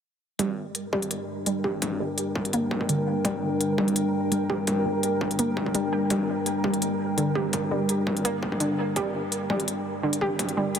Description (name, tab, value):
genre	half-time drum and bass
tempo	168 BPM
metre	4/4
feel	swing 53% on 16ths, half-time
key	G minor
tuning	A4 = 444 Hz
part	dark analog pad	sustained chords	0.8-10.8 s	G3 to G5	-28 LUFS	left 1 dB	chorus, sidechain pumping
part	warbly dusty pluck	arpeggios	0.4-10.8 s	D3 to G4	-28 LUFS	right 1 dB	chorus, diffuse ambient delay
part	electronic hi-hat	drums	0.4-10.8 s	none	-29 LUFS	left 2 dB	overdrive
part	electronic kick drum	drums	0.4-10.5 s	none	-32 LUFS	left 1 dB	distortion, overdrive, high-pass filter on kick, high-pass filter on room
part	pulsing gated texture	texture	0.4-10.8 s	Bb4	-36 LUFS	right 3 dB	chorus, built-in reverb
room	wet huge ambient reverb, RT60 8.8 s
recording	dreamy mix soaked in reverb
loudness	-24 LUFS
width	side -8 dB against mid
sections	0.4-10.8 A section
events	filter sweep on synth pluck 0.4-10.8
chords	0.4 Gm